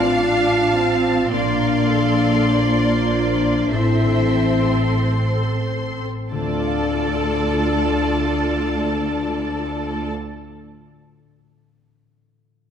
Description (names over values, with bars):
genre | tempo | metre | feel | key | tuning
cinematic, emotional film score for orchestra | 45-54 BPM | 4/4 | rubato | D minor | A4 = 439 Hz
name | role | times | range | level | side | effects
rich symphonic violin section | melody | 0.0-10.1 s | D5 to F5 | -27 LUFS | equal | none
rich symphonic violin section | second line | 0.0-10.1 s | A4 to C6 | -26 LUFS | left 1 dB | none
rich symphonic viola section | accompaniment | 0.0-10.1 s | E3 to A4 | -26 LUFS | right 1 dB | none
mellow French horn section | sustained chords | 0.0-10.1 s | D4 to F4 | -22 LUFS | left 2 dB | none
concert harp | arpeggios | 0.0-10.4 s | A2 to F5 | -26 LUFS | left 4 dB | none
rich studio cello section | bass | 0.0-10.1 s | D2 to D4 | -27 LUFS | right 3 dB | none
rich symphonic double bass section | bass | 0.0-10.1 s | A1 to D2 | -26 LUFS | right 3 dB | none
room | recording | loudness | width
wet scoring stage reverb, RT60 2.0 s | none | -17 LUFS | side -8 dB against mid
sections
0.0-6.3 A section; 6.3-11.4 B section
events
slowing down 0.0-6.3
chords
0.0 Dm/A; 1.3 Bbadd9; 3.7 Am; 6.3 Dm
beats
0.19 | 1.33 2.50 3.73 5.01 | 6.32 7.61 8.87 10.13